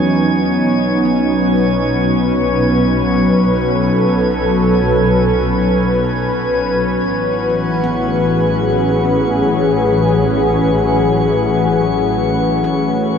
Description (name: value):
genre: ambient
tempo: free time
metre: none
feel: none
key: unclear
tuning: A4 = 440 Hz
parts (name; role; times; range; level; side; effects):
- warm analog pad; sustained chords; 0.0-13.2 s; E3 to G#5; -14 LUFS; left 1 dB; chorus, shimmer reverb
- handpan; arpeggios; 0.0-1.0, 7.8-13.2 s; F#3 to C#4; -26 LUFS; left 1 dB; none
- clear studio double bass section; bass; 0.0-13.2 s; A1 to E2; -22 LUFS; equal; none
- bowed-like drone; drone; 0.2-13.2 s; F#3 to C#4; -25 LUFS; equal; built-in reverb
- drifting glass-harmonics texture; texture; 0.0-13.2 s; C#4 to F#5; -21 LUFS; equal; chorus, built-in reverb, shimmer reverb
room: wet huge ambient reverb, RT60 7.9 s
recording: in a vast, echoing space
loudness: -12 LUFS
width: side -7 dB against mid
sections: 0.0-13.2 A section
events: fade-in on synth drone 0.0-13.2; fade-out on synth texture 0.0-13.2; filter sweep on analog synth pad 0.0-13.2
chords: 0.0 Emaj7; 0.6 B7; 7.0 Amaj9